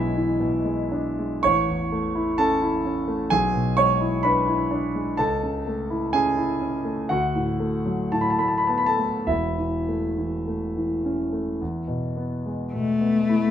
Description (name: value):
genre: classical, romantic duo for cello and grand piano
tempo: 49-66 BPM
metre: 4/4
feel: rubato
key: A major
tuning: A4 = 440 Hz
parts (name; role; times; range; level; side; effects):
- warm concert grand piano; accompaniment; 0.0-13.5 s; E1 to C#6; -22 LUFS; equal; none
- rich cello; melody; 12.7-13.5 s; A3; -20 LUFS; left 4 dB; none
room: moderate large studio reverb, RT60 0.8 s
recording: minimal, uncompressed stereo recording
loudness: -21 LUFS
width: side -10 dB against mid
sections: 0.0-13.5 A section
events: none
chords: 0.0 E7/B; 1.4 A; 3.3 E7/B; 5.2 A/C#; 7.1 Bm7/D; 9.3 A/E; 11.6 E